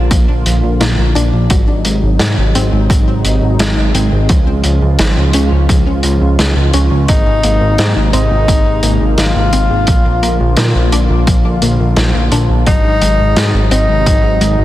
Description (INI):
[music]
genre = synthwave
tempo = 86 BPM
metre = 4/4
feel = straight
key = Ab major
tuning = A4 = 440 Hz
[part]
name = warm analog pad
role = sustained chords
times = 0.0-14.6 s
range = C3 to F4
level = -19 LUFS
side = equal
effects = chorus, sidechain pumping
[part]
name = fat analog bass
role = bass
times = 0.0-14.6 s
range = Ab1 to Bb2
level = -13 LUFS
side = equal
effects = sidechain pumping
[part]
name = analog pluck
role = arpeggios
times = 0.1-14.6 s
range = F3 to D4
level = -22 LUFS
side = left 2 dB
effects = chorus, phaser, digital delay
[part]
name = crunchy breakbeat drum kit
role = drums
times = 0.1-14.6 s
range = hi-hat, snare drum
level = -18 LUFS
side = equal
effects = none
[part]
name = electronic kick drum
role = drums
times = 0.1-14.2 s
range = none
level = -12 LUFS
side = equal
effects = overdrive
[part]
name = warm tenor saxophone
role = melody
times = 7.1-14.6 s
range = Eb4 to F4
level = -17 LUFS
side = left 2 dB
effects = digital delay
[sound]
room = light reverb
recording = dense, heavily limited modern master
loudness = -10 LUFS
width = side -14 dB against mid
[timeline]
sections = 0.0-14.6 A section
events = none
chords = 0.0 Bb; 1.5 Ab7; 4.3 Db; 7.1 Abadd9; 9.9 Bb; 12.7 Ab7